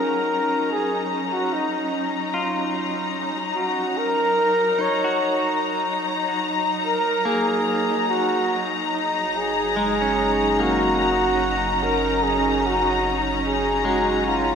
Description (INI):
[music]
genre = ambient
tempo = 73 BPM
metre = 4/4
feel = straight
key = F# major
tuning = A4 = 439 Hz
[part]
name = mellow flugelhorn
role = melody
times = 0.0-14.6 s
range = D#4 to C#5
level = -23 LUFS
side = equal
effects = tape echo
[part]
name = rich studio string section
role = sustained chords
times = 0.0-14.6 s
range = F#3 to A#5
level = -23 LUFS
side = left 1 dB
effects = none
[part]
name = clean electric guitar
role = arpeggios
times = 2.3-14.6 s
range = G#3 to F#4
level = -28 LUFS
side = equal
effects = tape echo
[part]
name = warm sub bass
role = bass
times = 8.9-14.6 s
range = F#1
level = -33 LUFS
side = equal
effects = none
[sound]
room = wet lush hall reverb, RT60 2.6 s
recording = none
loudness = -19 LUFS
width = side -7 dB against mid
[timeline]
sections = 0.0-8.9 A section; 8.9-14.6 A section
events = none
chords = 0.0 F#6; 2.3 F#maj13; 8.9 F#6